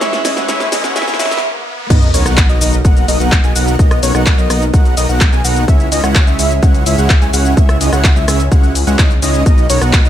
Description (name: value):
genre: EDM, festival progressive house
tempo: 127 BPM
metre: 4/4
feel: straight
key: B major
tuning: A4 = 437 Hz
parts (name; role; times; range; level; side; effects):
- direct-recorded clean electric guitar; accompaniment; 0.0-1.4 s; E3 to E4; -22 LUFS; left 1 dB; vintage 12-bit sampler grit, sidechain pumping, digital delay
- lush unison pad; sustained chords; 0.0-10.1 s; C#3 to C#5; -26 LUFS; right 1 dB; none
- wide unison lead; arpeggios; 0.0-10.1 s; C#5 to G#5; -20 LUFS; equal; sidechain pumping, digital delay
- dense compressed supersaw; riff; 0.0-10.1 s; G#3 to G#5; -20 LUFS; right 1 dB; sidechain pumping, digital delay
- big-room dance drum kit; drums; 0.0-10.1 s; crash cymbal, handclaps, hi-hat, ride cymbal, rim click, shaker, snare drum; -18 LUFS; left 1 dB; none
- riser and sub drop; sound effects; 0.0-3.8 s; none; -22 LUFS; equal; none
- wide detuned saw bass; bass; 1.9-10.1 s; B1 to C#2; -16 LUFS; equal; chorus, sidechain pumping
- electronic kick drum; drums; 1.9-10.0 s; none; -10 LUFS; equal; none
room: light reverb, digital ambience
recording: high-pass filter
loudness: -10 LUFS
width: side -11 dB against mid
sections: 0.0-1.9 A section; 1.9-10.1 B section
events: build-up 0.0-1.9; drum fill 0.0-1.4; stop 1.4-1.9; drop 1.9-10.1; impact 1.9-3.8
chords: 0.0 C#m; 1.9 Bmaj7; 5.7 C#m; 9.5 Bmaj7